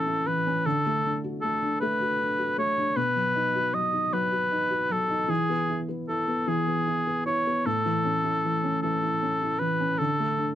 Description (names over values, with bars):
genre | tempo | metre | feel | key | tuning
children's music, lullaby | 51 BPM (dotted quarters) | 6/8 | straight | A major | A4 = 440 Hz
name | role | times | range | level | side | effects
warm oboe | melody | 0.0-10.5 s | G#4 to D#5 | -25 LUFS | equal | none
felt-muted upright piano | accompaniment | 0.0-10.6 s | A2 to F#4 | -28 LUFS | equal | none
room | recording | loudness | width
little or no reverb | close, detailed microphones | -24 LUFS | side -11 dB against mid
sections
0.0-10.6 A section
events
none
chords
0.0 A; 0.7 D; 3.0 B; 5.3 E; 7.7 A; 10.0 D5